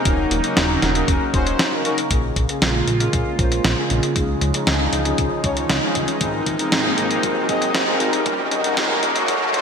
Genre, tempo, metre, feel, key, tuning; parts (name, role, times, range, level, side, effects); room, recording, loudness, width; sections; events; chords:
synthwave; 117 BPM; 4/4; straight; Bb minor; A4 = 442 Hz
phased analog pad; sustained chords; 0.0-9.6 s; C3 to F4; -23 LUFS; right 1 dB; phaser, chorus, sidechain pumping
analog synth brass; stabs; 0.0-9.6 s; Bb3 to Eb5; -23 LUFS; left 2 dB; chorus, digital delay
chorused synth bass; bass; 0.1-9.6 s; Eb1 to Db2; -25 LUFS; equal
clean 12-bit digital drum machine; drums; 0.1-9.6 s; hi-hat, snare drum; -22 LUFS; equal
electronic kick drum; drums; 0.1-9.6 s; -24 LUFS; equal
riser; sound effects; 4.6-9.6 s; -28 LUFS; right 1 dB
wet lush hall reverb, RT60 1.9 s; bright 1980s-style digital production, high-pass filter; -17 LUFS; side -6 dB against mid
0.0-2.1 A section; 2.1-9.6 B section
filter sweep on analog polysynth 2.1-9.6; riser 4.6-9.6
0.1 Ebm7; 2.1 Bbm7; 4.2 Dbadd9; 6.2 Abadd9; 8.3 Ebm7